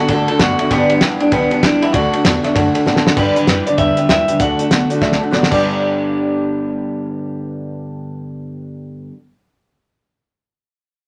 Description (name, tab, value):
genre	rockabilly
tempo	195 BPM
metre	4/4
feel	swing 62% on 8ths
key	G major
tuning	A4 = 442 Hz
part	electric guitar through a small old amp	melody	0.0-9.1 s	B3 to F#5	-21 LUFS	equal	none
part	dark upright piano	accompaniment	0.0-9.1 s	A4 to A5	-26 LUFS	equal	none
part	picked steel-string acoustic guitar	accompaniment	0.0-9.2 s	G2 to B4	-22 LUFS	equal	none
part	electric guitar through a small old amp	riff	0.0-9.1 s	G2 to D4	-25 LUFS	equal	phaser
part	upright bass	bass	0.1-9.1 s	F#1 to A2	-30 LUFS	equal	none
part	cloth-damped thuddy drum kit	drums	0.1-5.6 s	crash cymbal, hi-hat, kick drum, ride cymbal, snare drum	-20 LUFS	equal	none
room	moderate studio reverb, RT60 0.6 s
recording	none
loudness	-15 LUFS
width	mono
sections	0.0-3.2 A section; 3.2-5.6 B section; 5.6-8.1 C section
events	drum fill 2.9-3.2, 5.0-5.6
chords	0.0 D; 0.7 G; 1.9 D; 3.2 G; 4.4 D; 5.5 G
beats	0.09 0.40 | 0.71 1.01 1.32 1.63 | 1.94 2.25 2.55 2.86 | 3.17 3.48 3.79 4.09 | 4.40 4.71 5.02 5.33 | 5.63 5.94 6.25 6.56 | 6.86 7.17 7.48 7.79